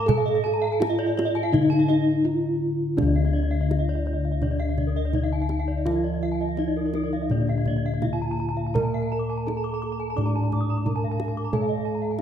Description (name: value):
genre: Balinese gamelan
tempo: 83 BPM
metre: 4/4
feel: straight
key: D pelog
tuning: A4 = 435 Hz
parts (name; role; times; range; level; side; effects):
- gamelan-type bronze metallophone; melody; 0.0-12.2 s; D4 to D5; -27 LUFS; equal; none
- gamelan-type bronze metallophone; arpeggios; 0.0-12.1 s; D5 to D6; -35 LUFS; right 5 dB; none
- gamelan-type bossed gongs; bass; 0.0-12.2 s; D2 to Bb4-20c; -26 LUFS; left 2 dB; none
- gamelan-type bronze metallophone; arpeggios; 0.1-12.2 s; Bb4-20c to Eb6+20c; -33 LUFS; left 5 dB; none
- kendang; percussion; 0.1-12.2 s; none; -29 LUFS; right 3 dB; none
- gamelan-type bronze metallophone; accompaniment; 3.0-12.2 s; D3 to D4; -32 LUFS; right 2 dB; none
room: moderate scoring stage reverb, RT60 1.6 s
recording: dark, warm production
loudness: -22 LUFS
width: side -9 dB against mid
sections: 0.0-12.2 A section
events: none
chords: none